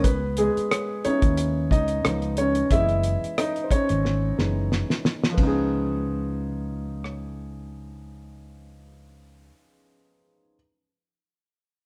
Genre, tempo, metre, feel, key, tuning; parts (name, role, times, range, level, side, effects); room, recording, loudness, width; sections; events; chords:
R&B, neo-soul; 90 BPM; 4/4; swing 54% on 16ths; A4 = 440 Hz
dark concert grand piano; accompaniment; 0.0-10.6 s; E3 to E5; -27 LUFS; equal
fretless electric bass; bass; 0.0-9.5 s; F#1 to D#2; -30 LUFS; equal
cloth-damped thuddy drum kit; drums; 0.0-7.2 s; hi-hat, kick drum, ride cymbal, rim click, snare drum; -26 LUFS; equal
moderate stone room reverb, RT60 1.2 s; band playing live in one room; -24 LUFS; mono
0.0-5.4 A section; 5.4-8.0 B section
grand piano solo 0.0-5.4; drum fill 4.0-5.4
0.0 C#m9; 2.0 C#9; 2.7 F#13sus4; 5.4 C#9